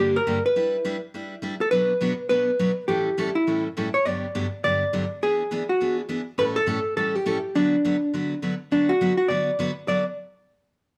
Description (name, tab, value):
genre	country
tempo	206 BPM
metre	4/4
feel	swing 61% on 8ths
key	D major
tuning	A4 = 439 Hz
part	vintage hollow-body jazz guitar	melody	0.0-10.1 s	D4 to D5	-24 LUFS	equal	none
part	picked steel-string acoustic guitar	accompaniment	0.0-10.0 s	G2 to B4	-30 LUFS	equal	none
room	moderate studio reverb, RT60 0.8 s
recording	none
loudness	-24 LUFS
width	mono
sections	0.0-8.7 A section; 8.7-9.9 B section; 9.9-11.0 C section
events	none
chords	0.0 Gm; 0.6 Em7/G; 1.7 Bm; 2.9 A7; 4.1 Gmaj7; 5.2 E7; 6.4 A7; 7.5 D6